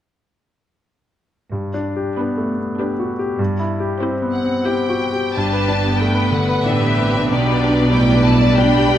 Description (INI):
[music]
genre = classical, romantic movement for piano and orchestra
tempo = 94 BPM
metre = 3/4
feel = uneven beats, rubato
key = G major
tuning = A4 = 440 Hz
[part]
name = clear concert grand piano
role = melody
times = 1.5-9.0 s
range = B1 to D5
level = -18 LUFS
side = left 1 dB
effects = none
[part]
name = rich symphonic cello section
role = bass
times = 1.5-9.0 s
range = G2 to B2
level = -23 LUFS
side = right 3 dB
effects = none
[part]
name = warm symphonic viola section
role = accompaniment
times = 2.2-9.0 s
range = G3 to C5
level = -24 LUFS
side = right 2 dB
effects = none
[part]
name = rich studio violin section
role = melody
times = 4.3-9.0 s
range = D5 to B5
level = -24 LUFS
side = left 3 dB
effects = none
[part]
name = warm symphonic violin section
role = second line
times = 5.3-9.0 s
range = G4 to G5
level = -23 LUFS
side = left 2 dB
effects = none
[part]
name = rich symphonic double bass section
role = bass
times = 5.3-9.0 s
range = G1 to B1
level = -22 LUFS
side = right 3 dB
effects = none
[sound]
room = moderate concert hall reverb, RT60 2.2 s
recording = none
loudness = -15 LUFS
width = side -11 dB against mid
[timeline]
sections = 1.5-5.3 A section; 5.3-9.0 B section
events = none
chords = 1.5 G; 3.4 C/G; 5.3 G; 7.3 G/B